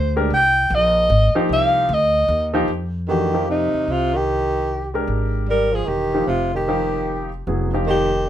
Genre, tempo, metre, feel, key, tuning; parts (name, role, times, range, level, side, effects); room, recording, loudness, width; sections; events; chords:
jazz; 151 BPM; 3/4; swing 64% on 8ths; F dorian; A4 = 440 Hz
breathy alto saxophone; melody; 0.0-8.3 s; Eb4 to G5; -19 LUFS; equal
upright bass; bass; 0.0-8.3 s; E1 to F2; -23 LUFS; equal
warm concert grand piano; accompaniment; 0.2-8.1 s; E3 to Bb4; -22 LUFS; equal
breathy tenor saxophone; second line; 3.1-8.3 s; C3 to G3; -24 LUFS; right 3 dB
moderate studio reverb, RT60 0.6 s; minimal, uncompressed stereo recording; -17 LUFS; side -11 dB against mid
0.0-2.7 A section; 2.7-8.3 B section
alto saxophone solo 0.0-2.7
0.0 Fm11